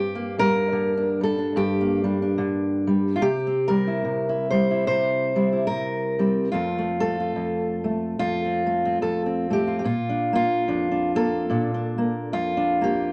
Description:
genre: folk, solo fingerstyle acoustic guitar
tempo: 72 BPM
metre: 4/4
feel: swing 58% on 8ths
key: unclear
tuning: A4 = 442 Hz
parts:
  - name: fingerpicked steel-string acoustic guitar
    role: solo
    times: 0.0-13.1 s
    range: F2 to C5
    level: -24 LUFS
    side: equal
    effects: none
room: wet small room ambience, RT60 0.5 s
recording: none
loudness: -24 LUFS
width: mono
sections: 0.0-9.8 A section; 9.8-13.1 B section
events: none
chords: 0.0 Gm; 3.2 C; 6.5 F; 9.8 Bb

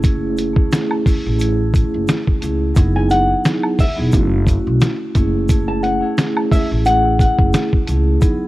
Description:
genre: hip hop, boom-bap hip-hop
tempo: 88 BPM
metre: 4/4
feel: swing 56% on 16ths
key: F# dorian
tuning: A4 = 440 Hz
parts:
  - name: vibraphone with medium mallets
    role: accompaniment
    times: 0.0-8.5 s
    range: F#3 to G#4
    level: -20 LUFS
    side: right 1 dB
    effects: high-pass filter, low-pass filter
  - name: upright bass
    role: bass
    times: 0.0-8.2 s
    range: E1 to C#2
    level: -18 LUFS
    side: equal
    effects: none
  - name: dusty soul sampler-style drum kit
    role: drums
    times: 0.0-8.4 s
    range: hi-hat, kick drum, snare drum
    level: -16 LUFS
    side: equal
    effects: cassette tape
  - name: tube shaker and woodblock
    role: percussion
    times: 0.0-8.4 s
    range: none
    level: -27 LUFS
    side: right 1 dB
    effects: none
  - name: flamenco guitar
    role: melody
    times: 3.0-7.7 s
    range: E5 to A5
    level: -18 LUFS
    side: left 1 dB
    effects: high-pass filter, low-pass filter, cassette tape
room: little or no reverb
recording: home recording on cassette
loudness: -14 LUFS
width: side -17 dB against mid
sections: 0.0-2.8 A section; 2.8-8.5 A section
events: none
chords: 0.0 F#m7; 2.8 Emaj9; 4.1 B7sus4/F# (rootless); 5.2 F#m7

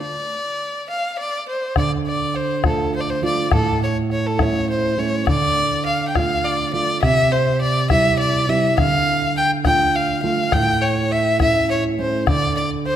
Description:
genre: andean folk, Andean ensemble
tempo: 68 BPM (dotted quarters)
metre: 6/8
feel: straight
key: D minor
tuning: A4 = 440 Hz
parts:
  - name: rich violin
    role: melody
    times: 0.0-13.0 s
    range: A4 to G5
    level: -20 LUFS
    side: left 1 dB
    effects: none
  - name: nylon-string guitar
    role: accompaniment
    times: 1.8-13.0 s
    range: A2 to F4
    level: -21 LUFS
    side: right 3 dB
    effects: none
  - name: bombo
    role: percussion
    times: 1.8-12.9 s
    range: none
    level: -23 LUFS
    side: left 3 dB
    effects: none
room: wet recital hall reverb, RT60 1.7 s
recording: none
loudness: -17 LUFS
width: side -10 dB against mid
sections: 0.0-1.8 A section; 1.8-13.0 A section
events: stop 0.0-1.8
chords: 0.0 N.C.; 1.8 Dm; 3.5 A; 5.3 Dm; 7.0 C; 8.8 Dm; 10.5 A; 12.3 N.C.

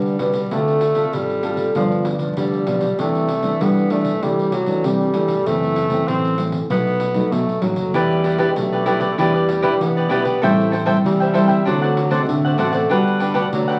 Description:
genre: samba and choro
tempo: 97 BPM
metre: 4/4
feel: straight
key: G major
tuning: A4 = 440 Hz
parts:
  - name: breathy tenor saxophone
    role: second line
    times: 0.0-13.8 s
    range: F3 to C4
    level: -25 LUFS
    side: equal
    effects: none
  - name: nylon-string guitar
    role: accompaniment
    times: 0.0-13.8 s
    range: F#2 to B4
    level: -23 LUFS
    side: equal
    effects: none
  - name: fingered electric bass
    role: bass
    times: 0.0-13.8 s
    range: F#1 to E3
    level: -26 LUFS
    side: equal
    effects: none
  - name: pandeiro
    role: percussion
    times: 0.1-13.8 s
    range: none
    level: -33 LUFS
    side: equal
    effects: none
  - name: cavaquinho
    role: accompaniment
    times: 7.9-13.8 s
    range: D4 to G5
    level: -23 LUFS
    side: equal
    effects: none
room: wet large studio reverb, RT60 0.8 s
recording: very old 78 rpm record, vinyl crackle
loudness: -19 LUFS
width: mono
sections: 0.0-13.8 A section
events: none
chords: 0.0 Gmaj7; 0.5 Dm7; 1.8 G7; 3.0 C69; 5.5 F#m7b5; 6.7 B7; 7.9 Em7; 10.4 Am7; 11.7 D7; 12.9 Gmaj7

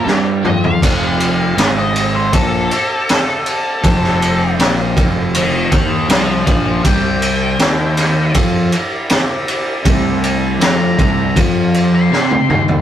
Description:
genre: blues rock power trio and southern rock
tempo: 80 BPM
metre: 4/4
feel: straight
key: unclear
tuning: A4 = 440 Hz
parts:
  - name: octave-fuzz lead guitar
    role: melody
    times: 0.0-12.8 s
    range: A4 to C6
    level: -20 LUFS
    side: left 2 dB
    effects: wah, distortion
  - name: overdriven tonewheel organ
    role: sustained chords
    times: 0.0-12.8 s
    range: A3 to E5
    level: -27 LUFS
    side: right 2 dB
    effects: slow rotary speaker
  - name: crunchy overdriven guitar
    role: riff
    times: 0.0-12.8 s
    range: F2 to C4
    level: -18 LUFS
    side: equal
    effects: none
  - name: fuzz fingered electric bass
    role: bass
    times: 0.0-12.8 s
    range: F1 to C3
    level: -19 LUFS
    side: left 1 dB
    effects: overdrive
  - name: raw garage drum kit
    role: drums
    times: 0.1-12.8 s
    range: crash cymbal, kick drum, ride cymbal, snare drum, toms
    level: -15 LUFS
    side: equal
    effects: none
room: light reverb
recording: rough rehearsal-room recording, tube saturation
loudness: -12 LUFS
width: side -10 dB against mid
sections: 0.0-12.8 A section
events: lead electric guitar solo 0.0-12.8; drum fill 0.1-0.8, 12.1-12.8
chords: 0.0 C7 (rootless); 0.8 F7; 6.8 C7

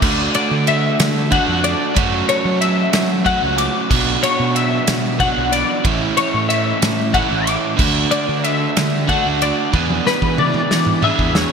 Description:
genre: math rock and midwest emo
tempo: 62 BPM (dotted quarters)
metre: 6/8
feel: straight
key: unclear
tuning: A4 = 438 Hz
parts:
  - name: twelve-string electric guitar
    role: arpeggios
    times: 0.0-11.5 s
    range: B4 to D6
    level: -20 LUFS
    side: left 5 dB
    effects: ensemble chorus
  - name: overdriven electric guitar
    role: riff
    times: 0.0-11.5 s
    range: A2 to G#4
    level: -19 LUFS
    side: right 3 dB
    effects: none
  - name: fuzz fingered electric bass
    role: bass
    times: 0.0-11.4 s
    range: A1 to F#3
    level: -22 LUFS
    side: right 1 dB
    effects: overdrive
  - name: loose indie drum kit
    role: drums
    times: 0.0-11.5 s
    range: crash cymbal, kick drum, ride cymbal, snare drum, toms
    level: -20 LUFS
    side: right 1 dB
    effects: gated reverb
room: moderate lush hall reverb, RT60 2.8 s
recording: bright 1980s-style digital production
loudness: -14 LUFS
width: side -6 dB against mid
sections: 0.0-11.5 A section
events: drum fill 9.7-11.5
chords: 0.0 D; 2.0 F#m7; 3.9 Bm; 5.9 A6; 7.8 D; 9.7 E7

